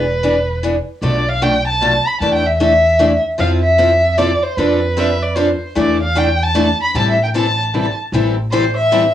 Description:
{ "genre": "acoustic string swing (jazz manouche)", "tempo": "152 BPM", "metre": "3/4", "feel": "swing 62% on 8ths", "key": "A minor", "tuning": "A4 = 440 Hz", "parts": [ { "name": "dark violin", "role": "melody", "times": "0.0-7.9 s", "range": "B4 to B5", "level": "-16 LUFS", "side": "equal", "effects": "cassette tape" }, { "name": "picked steel-string acoustic guitar", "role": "accompaniment", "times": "0.0-9.0 s", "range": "B2 to A4", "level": "-18 LUFS", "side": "left 3 dB", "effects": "cassette tape" }, { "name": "upright bass", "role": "bass", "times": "0.0-9.1 s", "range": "E1 to F2", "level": "-20 LUFS", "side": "equal", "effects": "none" }, { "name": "picked steel-string acoustic guitar", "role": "accompaniment", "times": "3.4-9.0 s", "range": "E3 to A4", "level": "-23 LUFS", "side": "right 5 dB", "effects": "cassette tape" }, { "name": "clear violin", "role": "second line", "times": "5.0-5.7, 8.5-9.1 s", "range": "C5 to E5", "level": "-17 LUFS", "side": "equal", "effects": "cassette tape" } ], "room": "moderate small room reverb, RT60 0.5 s", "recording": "home recording on cassette, small room ambience", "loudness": "-13 LUFS", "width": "side -11 dB against mid", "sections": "0.0-8.1 A section; 8.1-9.1 B section", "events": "violin solo 8.1-9.1", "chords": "0.0 E7; 1.0 Bm7b5; 2.2 E7sus4; 3.4 Fmaj7; 4.6 Dm7/F; 5.8 E7sus4; 6.9 Am7" }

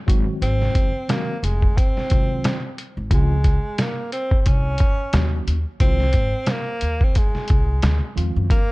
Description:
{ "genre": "hip hop, jazz-hop", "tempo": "89 BPM", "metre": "4/4", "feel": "swing 57% on 16ths", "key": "Db major", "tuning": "A4 = 442 Hz", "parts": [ { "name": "breathy tenor saxophone", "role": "melody", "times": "0.0-8.7 s", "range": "Ab3 to Db4", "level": "-27 LUFS", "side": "right 1 dB", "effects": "none" }, { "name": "tine electric piano", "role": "accompaniment", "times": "0.1-8.6 s", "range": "Db3 to Gb4", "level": "-29 LUFS", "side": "equal", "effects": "overdrive, fast stereo tremolo" }, { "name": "upright bass", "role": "bass", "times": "0.1-8.5 s", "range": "F1 to F#2", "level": "-21 LUFS", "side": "equal", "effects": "none" }, { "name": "trip hop sampler-style drum kit", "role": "drums", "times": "0.1-8.7 s", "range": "hi-hat, kick drum, snare drum", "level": "-19 LUFS", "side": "equal", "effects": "none" } ], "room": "little or no reverb", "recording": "dark, warm production", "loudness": "-18 LUFS", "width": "side -22 dB against mid", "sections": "0.0-8.7 A section", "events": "none", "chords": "0.1 Ab7; 3.1 Dbmaj7; 5.1 Ebm7; 5.8 Fm7; 7.8 D" }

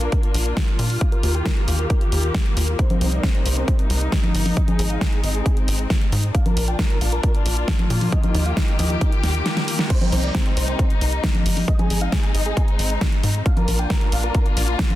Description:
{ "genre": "uplifting trance", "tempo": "135 BPM", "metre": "4/4", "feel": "straight", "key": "unclear", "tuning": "A4 = 440 Hz", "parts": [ { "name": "big supersaw lead", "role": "melody", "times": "0.0-14.4 s", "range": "C4 to G5", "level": "-31 LUFS", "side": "right 1 dB", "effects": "cassette tape, sidechain pumping, low-pass filter, digital delay" }, { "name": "warm studio string section", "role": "sustained chords", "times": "0.0-15.0 s", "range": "C3 to G4", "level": "-27 LUFS", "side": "left 3 dB", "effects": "sidechain pumping, low-pass filter" }, { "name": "tight sequencer bass", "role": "bass", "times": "0.0-14.8 s", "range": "G1 to Bb2", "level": "-21 LUFS", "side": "equal", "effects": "sidechain pumping" }, { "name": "big-room dance drum kit", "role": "drums", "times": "0.0-15.0 s", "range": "congas, crash cymbal, hi-hat, snare drum", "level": "-25 LUFS", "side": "left 1 dB", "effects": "none" }, { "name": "electronic kick drum", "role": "drums", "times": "0.1-14.9 s", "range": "none", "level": "-20 LUFS", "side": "equal", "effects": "none" } ], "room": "light reverb", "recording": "dense, heavily limited modern master", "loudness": "-18 LUFS", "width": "side -15 dB against mid", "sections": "0.0-15.0 A section", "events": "filter sweep on string section 0.0-15.0; drum fill 9.2-9.9", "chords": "0.0 Bb; 1.0 Ebadd9; 2.8 Cm7; 4.6 Ab; 6.3 Bb; 8.1 Ebadd9; 9.9 Cm7; 11.7 Ab; 13.5 Bb" }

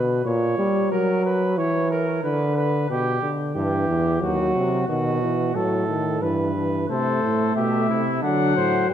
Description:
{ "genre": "classical, imitative canzona for brass ensemble", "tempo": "90 BPM", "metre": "3/4", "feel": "straight", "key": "E minor", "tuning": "A4 = 440 Hz", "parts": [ { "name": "warm flugelhorn", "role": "second line", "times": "0.0-8.9 s", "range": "D4 to C#5", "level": "-26 LUFS", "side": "right 2 dB", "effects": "none" }, { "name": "mellow trombone", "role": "accompaniment", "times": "0.0-8.9 s", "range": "A#2 to A3", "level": "-22 LUFS", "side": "equal", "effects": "none" }, { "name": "warm bass trombone", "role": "bass", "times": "3.6-8.9 s", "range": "D#2 to D3", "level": "-24 LUFS", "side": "right 1 dB", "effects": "none" }, { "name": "warm trumpet", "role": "melody", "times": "6.9-8.9 s", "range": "C5 to G5", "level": "-25 LUFS", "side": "left 10 dB", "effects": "none" } ], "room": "wet scoring stage reverb, RT60 2.0 s", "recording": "dark, warm production", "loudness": "-20 LUFS", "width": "side -9 dB against mid", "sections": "0.0-6.9 A section; 6.9-8.9 B section", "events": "none", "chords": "0.2 A#m6; 0.9 F#; 2.2 Bm/D; 2.9 Em/B; 4.2 D#m6; 4.9 B; 6.2 Em/G; 6.9 Am; 8.2 D" }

